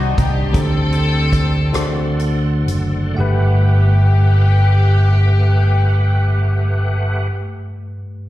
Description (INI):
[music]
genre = slow gospel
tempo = 37-56 BPM (dotted quarters)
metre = 6/8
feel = straight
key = G major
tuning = A4 = 442 Hz
[part]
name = warm studio string section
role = melody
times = 0.0-7.3 s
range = C4 to A4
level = -24 LUFS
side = left 4 dB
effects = slapback echo
[part]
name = bell-like tine electric piano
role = accompaniment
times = 0.0-8.3 s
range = G2 to F#5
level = -22 LUFS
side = left 1 dB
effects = medium stereo tremolo
[part]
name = bright tonewheel organ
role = sustained chords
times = 0.0-7.3 s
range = G3 to C6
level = -27 LUFS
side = right 3 dB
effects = fast rotary speaker, chorus vibrato
[part]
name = fingered electric bass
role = bass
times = 0.0-7.3 s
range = F#1 to D2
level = -14 LUFS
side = equal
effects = none
[part]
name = swinging big-band drum kit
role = drums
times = 0.2-2.9 s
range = hi-hat, kick drum, rim click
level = -22 LUFS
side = equal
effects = none
[sound]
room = small room ambience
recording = live gig heard through the venue's PA, recital hall reverb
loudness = -13 LUFS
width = side -15 dB against mid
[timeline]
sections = 0.0-3.2 A section; 3.2-8.3 B section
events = slowing down 0.0-3.2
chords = 0.0 Cmadd9; 0.5 D7sus4; 1.7 D7; 3.2 Gmaj9